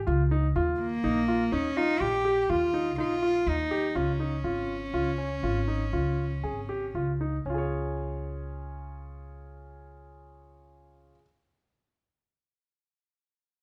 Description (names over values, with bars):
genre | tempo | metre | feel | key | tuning
contemporary instrumental, chamber music in an uneven meter | 121 BPM | 7/4 | straight | Db lydian | A4 = 439 Hz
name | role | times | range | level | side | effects
upright bass | bass | 0.0-11.1 s | Ab1 to Eb2 | -34 LUFS | equal | none
bright concert grand piano | arpeggios | 0.1-11.2 s | Db4 to Db5 | -33 LUFS | equal | none
rich cello | melody | 0.8-7.0 s | Bb3 to G4 | -31 LUFS | equal | none
room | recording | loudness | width
light reverb | none | -28 LUFS | mono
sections
0.0-7.5 A section; 7.5-11.0 B section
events
slowing down 3.5-7.5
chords
0.0 Db; 0.6 Ebsus2; 4.0 Db